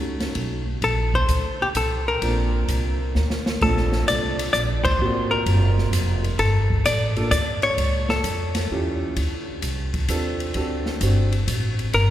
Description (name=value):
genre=jazz, small-group swing and bop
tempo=130 BPM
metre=3/4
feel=swing 68% on 8ths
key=Bb major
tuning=A4 = 441 Hz
part: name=warm concert grand piano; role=accompaniment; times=0.0-11.3 s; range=A3 to C5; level=-29 LUFS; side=right 1 dB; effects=none
part: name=upright bass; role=bass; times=0.0-12.1 s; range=F1 to F2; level=-23 LUFS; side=equal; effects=none
part: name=open jazz drum kit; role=drums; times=0.2-12.1 s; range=crash cymbal, hi-hat, kick drum, ride cymbal, snare drum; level=-29 LUFS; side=equal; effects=none
part: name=hollow-body jazz guitar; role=melody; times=0.8-9.0, 11.9-12.1 s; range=G4 to D5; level=-24 LUFS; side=left 2 dB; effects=none
room=wet cathedral reverb, RT60 5.0 s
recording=recorded in a church or concert hall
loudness=-20 LUFS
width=side -12 dB against mid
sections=0.0-3.6 A section; 3.6-12.1 B section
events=drum fill 3.2-3.6; band accent 4.8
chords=0.0 B9; 0.8 Bbadd9; 3.6 Bbmaj9; 5.0 Ab13; 6.4 Gsus2; 7.8 A7b13; 9.2 Dm7; 10.6 D7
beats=0.37 | 0.83 1.29 1.76 | 2.22 2.69 3.15 | 3.62 4.08 4.54 | 5.00 5.47 5.93 | 6.39 6.86 7.32 | 7.78 8.24 8.71 | 9.17 9.63 10.09 | 10.55 11.01 11.48 | 11.94